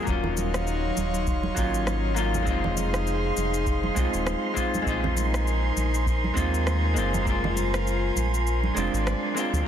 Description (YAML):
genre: sunset chillout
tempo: 100 BPM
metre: 4/4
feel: swing 57% on 16ths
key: unclear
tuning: A4 = 440 Hz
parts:
  - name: vintage hollow-body jazz guitar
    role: accompaniment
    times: 0.0-9.7 s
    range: Gb3 to F4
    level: -29 LUFS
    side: moving between left 2 dB and right 5 dB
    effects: auto-pan, digital delay
  - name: airy breathy pad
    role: sustained chords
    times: 0.0-9.7 s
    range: Gb3 to Ab5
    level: -30 LUFS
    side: left 2 dB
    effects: chorus
  - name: round analog bass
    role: bass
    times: 0.1-9.6 s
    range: Eb1 to Eb2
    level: -27 LUFS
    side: equal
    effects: none
  - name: electronic cabasa and rim click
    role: drums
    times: 0.1-9.6 s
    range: none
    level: -34 LUFS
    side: left 2 dB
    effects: overdrive, low-pass filter on perc, low-pass filter on snare
  - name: electronic kick drum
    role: drums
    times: 0.1-7.4 s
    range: none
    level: -30 LUFS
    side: equal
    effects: none
  - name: wind-like tuned noise texture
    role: texture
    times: 0.7-9.7 s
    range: C6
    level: -33 LUFS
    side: right 3 dB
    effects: built-in reverb
  - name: congas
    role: percussion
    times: 0.2-9.6 s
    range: none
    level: -35 LUFS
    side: right 5 dB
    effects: none
room: light reverb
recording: dense, heavily limited modern master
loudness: -23 LUFS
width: side -9 dB against mid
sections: 0.0-9.7 A section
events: kick drops out 8.5-9.7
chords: 0.1 Ebm9; 2.5 Fm7; 4.9 Bb9sus4; 7.0 Gbmaj9#11; 8.5 Bb9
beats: | 0.07 0.67 1.27 1.87 | 2.47 3.07 3.67 4.27 | 4.87 5.47 6.07 6.67 | 7.27 7.87 8.47 9.07 | 9.67